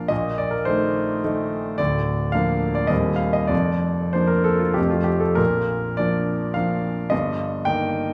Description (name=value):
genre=classical, romantic character piece for solo piano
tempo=92-110 BPM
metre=3/4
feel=rubato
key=Bb major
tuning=A4 = 439 Hz
part: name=clear concert grand piano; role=solo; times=0.0-8.1 s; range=D1 to G5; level=-22 LUFS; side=equal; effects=none
room=moderate recital hall reverb, RT60 1.6 s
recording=small room ambience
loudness=-22 LUFS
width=mono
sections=0.0-8.1 A section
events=none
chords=0.1 Adim/Bb; 1.8 Bb/D; 2.9 Cm/Eb; 3.5 Bb/F; 4.8 F; 5.4 Bb; 7.1 Eb/G